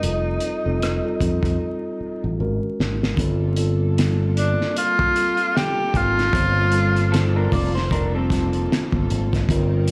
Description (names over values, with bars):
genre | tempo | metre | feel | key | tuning
R&B, neo-soul | 76 BPM | 4/4 | swing 58% on 16ths | unclear | A4 = 441 Hz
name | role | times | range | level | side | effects
breathy tenor saxophone | melody | 0.0-7.5 s | D4 to G4 | -25 LUFS | equal | slapback echo
mellow tine electric piano | accompaniment | 0.0-9.9 s | G3 to C5 | -29 LUFS | equal | slapback echo
fingered electric bass | bass | 0.0-9.9 s | F1 to F2 | -24 LUFS | equal | none
cloth-damped thuddy drum kit | drums | 0.0-9.9 s | hi-hat, kick drum, rim click, snare drum | -27 LUFS | equal | none
clear symphonic string section | sustained chords | 3.2-9.9 s | Eb3 to A4 | -35 LUFS | equal | none
electric guitar through a small old amp | second line | 7.1-9.3 s | C4 to D5 | -30 LUFS | equal | slapback echo
room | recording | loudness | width
light reverb, small room reverb | live gig heard through the venue's PA, club reverb, vinyl crackle | -21 LUFS | mono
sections
0.0-3.2 A section; 3.2-9.9 B section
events
drum fill 1.6-3.2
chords
0.0 F9; 2.4 Absus2; 3.2 Gm9